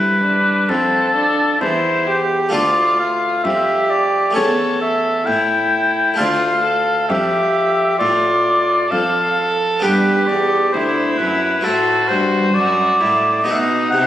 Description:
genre	classical, baroque-style sonata movement with continuo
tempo	66 BPM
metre	4/4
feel	straight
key	unclear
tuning	A4 = 441 Hz
part	warm oboe	melody	0.0-14.1 s	A4 to G5	-17 LUFS	left 2 dB	none
part	rich violin	second line	0.0-14.1 s	C4 to A4	-20 LUFS	right 2 dB	none
part	harpsichord	accompaniment	0.0-14.1 s	D2 to A4	-22 LUFS	left 1 dB	none
part	rich cello	bass	0.0-14.1 s	D2 to C3	-25 LUFS	equal	none
room	moderate concert hall reverb, RT60 1.9 s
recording	recorded on a phone in the room, studio reverb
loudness	-14 LUFS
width	side -12 dB against mid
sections	0.0-14.1 A section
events	none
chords	0.0 Am; 2.5 Dm; 4.4 A7/E; 6.2 Dm; 9.8 G; 11.6 F#dim; 13.5 B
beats	0.69 1.61 | 2.52 3.44 4.35 5.27 | 6.18 7.09 8.00 8.91 | 9.82 10.73 11.64 12.55 | 13.46

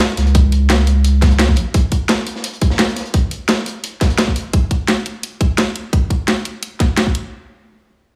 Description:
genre	liquid drum and bass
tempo	172 BPM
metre	4/4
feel	straight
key	unclear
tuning	A4 = 437 Hz
part	crunchy breakbeat drum kit	drums	0.0-4.4 s	hi-hat, snare drum	-27 LUFS	equal	high-pass filter on hats, high-pass filter on snare, high-pass filter on room
part	drum and bass drum kit	drums	0.0-7.2 s	hi-hat, snare drum	-20 LUFS	equal	overdrive
part	saturated sub bass	bass	0.2-1.6 s	Bb1 to Db2	-15 LUFS	equal	none
part	electronic kick drum	drums	0.3-7.1 s	none	-17 LUFS	equal	overdrive
room	light reverb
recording	studio reverb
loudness	-16 LUFS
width	mono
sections	0.0-7.3 A section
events	none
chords	none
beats	0.00 | 0.35 0.70 1.04 1.39 | 1.74 2.09 2.44 2.79 | 3.14 3.49 3.83 4.18 | 4.53 4.88 5.23 5.58 | 5.93 6.28 6.63 6.97

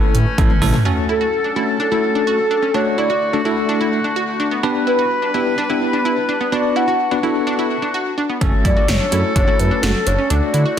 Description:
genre	synth-pop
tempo	127 BPM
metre	4/4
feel	straight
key	unclear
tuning	A4 = 440 Hz
part	mellow horn-like synth lead	melody	0.0-10.8 s	A4 to F#5	-20 LUFS	left 1 dB	chorus, digital delay
part	bell-like tine electric piano	accompaniment	0.0-10.6 s	A3 to B4	-21 LUFS	left 1 dB	medium stereo tremolo
part	warm woodwind section	sustained chords	0.0-10.8 s	D3 to B4	-24 LUFS	left 2 dB	none
part	smooth synth bass	bass	0.1-0.7, 8.4-10.6 s	F#1 to D3	-19 LUFS	equal	none
part	80s electronic pad drums	drums	0.1-0.8, 8.4-10.7 s	hi-hat, kick drum, snare drum, toms	-18 LUFS	equal	gated reverb on snare and toms, overdrive
part	analog pluck	arpeggios	0.9-10.8 s	B3 to F#4	-23 LUFS	right 1 dB	chorus, digital delay
room	moderate lush hall reverb, RT60 1.9 s, digital ambience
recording	dense, heavily limited modern master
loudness	-15 LUFS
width	side -9 dB against mid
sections	0.9-10.8 A section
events	drum fill 0.4-0.9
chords	0.0 A; 0.9 F#m; 2.7 D; 4.6 G; 6.5 Bm; 8.4 F#m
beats	0.38 | 0.85 1.33 1.80 2.27 | 2.74 3.22 3.69 4.16 | 4.63 5.11 5.58 6.05 | 6.52 7.00 7.47 7.94 | 8.41 8.89 9.36 9.83 | 10.30 10.78

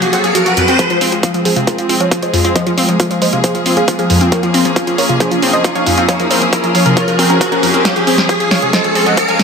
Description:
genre	uplifting trance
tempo	136 BPM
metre	4/4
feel	straight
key	F phrygian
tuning	A4 = 440 Hz
part	supersaw stab	melody	0.0-9.4 s	Db4 to Ab5	-17 LUFS	right 2 dB	sidechain pumping, low-pass filter, tape echo
part	rich chamber string section	sustained chords	0.0-9.4 s	F3 to Ab4	-18 LUFS	equal	sidechain pumping
part	wide unison pluck	arpeggios	0.0-9.4 s	F2 to C4	-17 LUFS	left 3 dB	phaser, sidechain pumping, ping-pong delay
part	punchy analog drum machine	drums	0.0-9.4 s	hi-hat, snare drum	-18 LUFS	right 2 dB	none
part	riser	sound effects	0.0-9.4 s	none	-18 LUFS	equal	none
part	electronic kick drum	drums	0.8-9.3 s	none	-16 LUFS	equal	overdrive, high-pass filter on kick
room	light reverb, digital ambience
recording	high-pass filter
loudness	-10 LUFS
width	side -6 dB against mid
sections	0.8-9.4 A section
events	riser 0.0-0.8, 0.8-9.4; build-up 0.8-9.4; filter sweep on supersaw synth 0.8-9.4; drum fill 7.8-9.4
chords	0.0 Gbadd9; 0.8 Fm; 4.3 Bbm7; 7.8 Db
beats	0.35 | 0.79 1.23 1.67 2.12 | 2.56 3.00 3.44 3.88 | 4.32 4.76 5.20 5.64 | 6.08 6.53 6.97 7.41 | 7.85 8.29 8.73 9.17

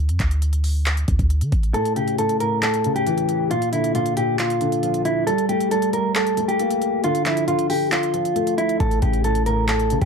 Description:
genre	hip hop, trap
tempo	136 BPM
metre	4/4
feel	half-time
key	D harmonic minor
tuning	A4 = 440 Hz
part	clean 808-style bass	bass	0.0-1.7, 8.8-10.1 s	A1 to D3	-20 LUFS	equal	none
part	trap drum kit	drums	0.1-10.1 s	handclaps, hi-hat, kick drum	-25 LUFS	equal	none
part	mellow electric guitar	melody	1.7-10.1 s	E4 to Bb4	-21 LUFS	right 1 dB	low-pass filter
part	dark grand piano	accompaniment	1.7-10.1 s	A2 to Bb3	-23 LUFS	left 2 dB	low-pass filter
room	light reverb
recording	none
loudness	-18 LUFS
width	side -6 dB against mid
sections	0.0-10.1 A section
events	break 0.0-1.7; kick muted 1.7-8.8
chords	0.0 D5; 1.7 A; 3.5 Bb; 5.3 Gmadd9; 7.0 Dm; 8.8 A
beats	0.42 0.86 1.30 | 1.74 2.18 2.62 3.07 | 3.51 3.95 4.39 4.83 | 5.27 5.71 6.16 6.60 | 7.04 7.48 7.92 8.36 | 8.80 9.24 9.68

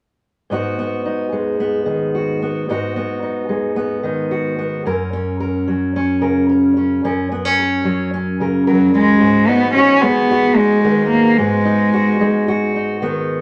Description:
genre	indie folk with a building arrangement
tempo	110 BPM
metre	4/4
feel	straight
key	unclear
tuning	A4 = 440 Hz
part	fingerpicked steel-string acoustic guitar	accompaniment	0.5-13.4 s	F#2 to A#4	-19 LUFS	equal	none
part	warm cello	melody	8.7-12.5 s	F#3 to C#4	-16 LUFS	equal	none
room	wet club reverb, RT60 0.6 s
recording	none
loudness	-17 LUFS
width	mono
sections	0.5-9.2 A section; 9.2-13.4 B section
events	none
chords	0.5 G#m7; 4.9 F#; 9.2 G#m7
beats	| 0.51 1.05 1.60 2.14 | 2.68 3.23 3.77 4.32 | 4.86 5.41 5.95 6.49 | 7.04 7.58 8.13 8.67 | 9.21 9.76 10.30 10.85 | 11.39 11.93 12.48 13.02

